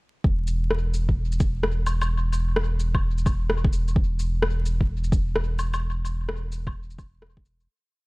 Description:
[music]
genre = future garage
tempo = 129 BPM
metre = 4/4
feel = swing 65% on 16ths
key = unclear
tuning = A4 = 440 Hz
[part]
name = warm sub bass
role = bass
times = 0.2-7.7 s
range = E1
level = -25 LUFS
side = equal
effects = sidechain pumping
[part]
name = electronic kick drum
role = drums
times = 0.2-7.4 s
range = none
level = -23 LUFS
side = equal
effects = overdrive, vintage 12-bit sampler grit
[part]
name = electronic shaker, rim click and woodblock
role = drums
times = 0.5-7.7 s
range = none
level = -28 LUFS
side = left 1 dB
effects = overdrive, vintage 12-bit sampler grit, tape echo
[sound]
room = digital ambience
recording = echo-heavy mix, vinyl crackle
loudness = -22 LUFS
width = side -25 dB against mid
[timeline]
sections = 0.2-7.7 groove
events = fade-out 5.2-7.7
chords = none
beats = | 0.24 0.71 1.17 1.64 | 2.10 2.57 3.03 3.50 | 3.96 4.43 4.89 5.36 | 5.82 6.29 6.75 7.22

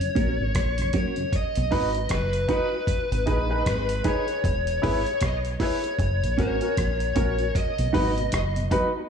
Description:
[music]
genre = dub reggae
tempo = 77 BPM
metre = 4/4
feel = swing 60% on 16ths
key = B major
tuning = A4 = 440 Hz
[part]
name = high-gain lead guitar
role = melody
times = 0.0-8.4 s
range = B4 to D#5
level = -28 LUFS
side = left 2 dB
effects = distortion, tape echo
[part]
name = mellow tonewheel organ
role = accompaniment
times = 0.0-1.7, 7.8-8.9 s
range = F#2 to D#4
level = -32 LUFS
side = left 1 dB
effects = chorus vibrato, slow rotary speaker
[part]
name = dusty soul sampler-style drum kit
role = drums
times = 0.0-8.9 s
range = hi-hat, kick drum, rim click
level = -29 LUFS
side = equal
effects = none
[part]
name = clean electric guitar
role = accompaniment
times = 0.2-9.0 s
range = C#4 to B4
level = -32 LUFS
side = right 7 dB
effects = tape echo
[part]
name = deep dub fingered electric bass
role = bass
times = 0.2-8.7 s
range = E1 to B1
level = -26 LUFS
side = equal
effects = none
[part]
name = warm baby grand piano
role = stabs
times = 1.7-8.9 s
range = C#4 to B4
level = -29 LUFS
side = equal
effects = tape echo
[sound]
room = light reverb, digital ambience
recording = small room ambience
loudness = -22 LUFS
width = side -7 dB against mid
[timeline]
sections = 0.0-9.1 A section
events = break 0.0-1.3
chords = 0.0 F#; 1.3 B; 2.9 G#m; 4.4 E; 6.0 F#; 7.6 B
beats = 0.55 | 1.33 2.11 2.88 3.66 | 4.44 5.22 6.00 6.78 | 7.55 8.33

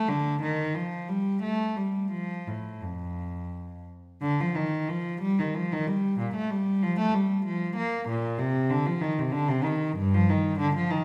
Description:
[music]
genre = classical, baroque-style suite movement for unaccompanied cello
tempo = 85-100 BPM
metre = 3/4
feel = rubato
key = unclear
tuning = A4 = 439 Hz
[part]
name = rich cello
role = solo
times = 0.0-11.0 s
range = F2 to Bb3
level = -28 LUFS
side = equal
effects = none
[sound]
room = wet recital hall reverb, RT60 1.3 s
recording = none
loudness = -28 LUFS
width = mono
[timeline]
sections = 0.0-4.2 A section; 4.2-11.0 A section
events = none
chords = none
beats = | 0.09 0.74 1.42 | 2.12 2.82 3.52 | 4.22 4.89 5.54 | 6.19 6.83 7.46 | 8.08 8.70 9.32 | 9.96 10.60

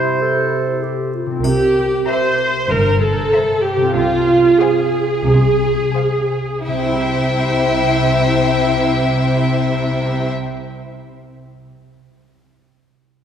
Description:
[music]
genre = cinematic, playful, whimsical film cue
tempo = 83-97 BPM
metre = 4/4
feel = straight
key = C major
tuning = A4 = 437 Hz
[part]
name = clear clarinet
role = second line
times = 0.0-1.4 s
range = E4 to A4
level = -25 LUFS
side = equal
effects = none
[part]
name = clear oboe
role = second line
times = 0.0-0.8 s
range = C5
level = -23 LUFS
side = right 1 dB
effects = none
[part]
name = mellow large flute ensemble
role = second line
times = 0.0-0.8 s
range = E4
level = -33 LUFS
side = left 1 dB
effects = none
[part]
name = mellow bassoon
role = accompaniment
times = 0.0-1.1 s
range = C3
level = -24 LUFS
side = right 4 dB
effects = none
[part]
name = concert harp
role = arpeggios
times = 0.0-11.1 s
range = C3 to E5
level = -26 LUFS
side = left 5 dB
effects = none
[part]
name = clear chamber double bass section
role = bass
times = 1.4-10.3 s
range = G1 to C2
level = -22 LUFS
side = right 1 dB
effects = none
[part]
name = triangle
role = percussion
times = 1.4-2.7 s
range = none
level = -37 LUFS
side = left 2 dB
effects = none
[part]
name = rich studio viola section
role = accompaniment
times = 1.5-10.3 s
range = E4 to C5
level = -17 LUFS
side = right 2 dB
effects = none
[part]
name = rich studio cello section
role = bass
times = 1.5-10.3 s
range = G2 to C3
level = -23 LUFS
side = equal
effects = none
[part]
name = rich chamber violin section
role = melody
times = 2.1-10.3 s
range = G5 to Bb5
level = -25 LUFS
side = left 7 dB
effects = none
[part]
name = clear chamber violin section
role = second line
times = 2.1-10.3 s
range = C5 to F5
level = -22 LUFS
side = left 2 dB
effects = none
[sound]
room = wet church reverb, RT60 2.9 s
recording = recorded in a church or concert hall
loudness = -14 LUFS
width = side -8 dB against mid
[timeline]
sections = 0.0-1.4 A section; 1.4-6.7 B section; 6.7-9.5 C section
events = slowing down 0.2-6.7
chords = 0.0 C; 1.4 C7; 4.0 Fm/C; 6.7 C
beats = 0.21 0.83 | 1.45 2.07 2.69 3.32 | 3.95 4.61 5.27 5.96 | 6.67 7.39 8.11 8.82

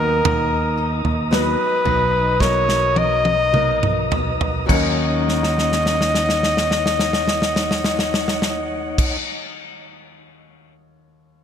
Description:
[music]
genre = pop ballad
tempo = 52-57 BPM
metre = 4/4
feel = straight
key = Eb minor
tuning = A4 = 440 Hz
[part]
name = warm flugelhorn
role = melody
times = 0.0-9.2 s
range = A#4 to Eb5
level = -20 LUFS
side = left 1 dB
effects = ping-pong delay
[part]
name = clear baby grand piano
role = accompaniment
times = 0.0-11.4 s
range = Eb2 to B4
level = -28 LUFS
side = left 2 dB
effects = wide subtle chorus
[part]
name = percussive tonewheel organ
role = sustained chords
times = 0.0-9.2 s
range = Eb4 to Eb6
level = -28 LUFS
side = left 1 dB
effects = fast rotary speaker
[part]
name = picked steel-string acoustic guitar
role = arpeggios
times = 0.0-9.2 s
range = D#3 to Bb4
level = -30 LUFS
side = left 5 dB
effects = ensemble chorus
[part]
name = fingered electric bass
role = bass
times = 0.0-9.2 s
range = B1 to D#2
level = -24 LUFS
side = right 1 dB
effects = none
[part]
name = natural country drum kit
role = drums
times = 0.3-10.7 s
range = crash cymbal, kick drum, snare drum, toms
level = -22 LUFS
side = equal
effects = none
[sound]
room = moderate plate reverb, RT60 3.3 s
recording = bright 1980s-style digital production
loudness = -16 LUFS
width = side -8 dB against mid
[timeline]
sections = 0.0-4.7 A section; 4.7-9.3 B section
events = slowing down 0.0-4.7; drum fill 2.4-4.7, 5.3-9.0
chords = 0.0 Bmaj7; 4.7 Ebm7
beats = | 0.25 1.31 2.41 3.54 | 4.69 5.84 6.98 8.12

